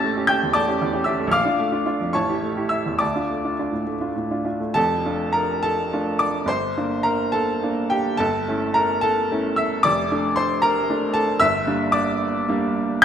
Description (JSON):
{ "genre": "classical, romantic character piece for solo piano", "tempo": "66-81 BPM (dotted quarters)", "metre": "6/8", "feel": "rubato", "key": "D minor", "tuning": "A4 = 439 Hz", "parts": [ { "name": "bright baby grand piano", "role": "solo", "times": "0.0-13.0 s", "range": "F1 to A6", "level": "-19 LUFS", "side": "equal", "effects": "none" } ], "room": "moderate concert hall reverb, RT60 2.2 s", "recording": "none", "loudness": "-19 LUFS", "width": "side -8 dB against mid", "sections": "0.0-4.8 A section; 4.8-13.0 B section", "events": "none", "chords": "0.0 A7; 1.3 Bbmaj7; 2.1 A7; 3.0 Dm; 4.8 Dm/F; 6.5 Gm; 8.2 A7/G; 9.9 Dm/F; 11.4 Gm" }